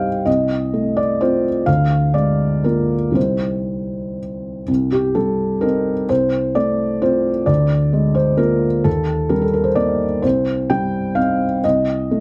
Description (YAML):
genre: neoclassical minimalist piano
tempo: 128 BPM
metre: 3/4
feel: rubato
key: C dorian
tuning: A4 = 440 Hz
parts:
  - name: felt-muted upright piano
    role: solo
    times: 0.0-12.2 s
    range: C2 to G5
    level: -18 LUFS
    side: equal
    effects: none
room: wet small room reverb, RT60 0.6 s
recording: dark, warm production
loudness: -18 LUFS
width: mono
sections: 0.0-4.7 A section; 4.7-12.2 A section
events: none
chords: 0.3 F/C; 1.7 Bb7/D; 3.2 Cm; 6.1 F/C; 7.5 Bb7/D; 8.9 Eb; 10.2 Cm; 11.6 F/C (rootless)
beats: | 0.26 0.74 1.21 | 1.67 2.15 2.64 | 3.15 3.67 4.18 | 4.68 5.16 5.63 | 6.10 6.56 7.03 | 7.49 7.94 8.40 | 8.86 9.32 9.78 | 10.24 10.69 11.16 | 11.64 12.11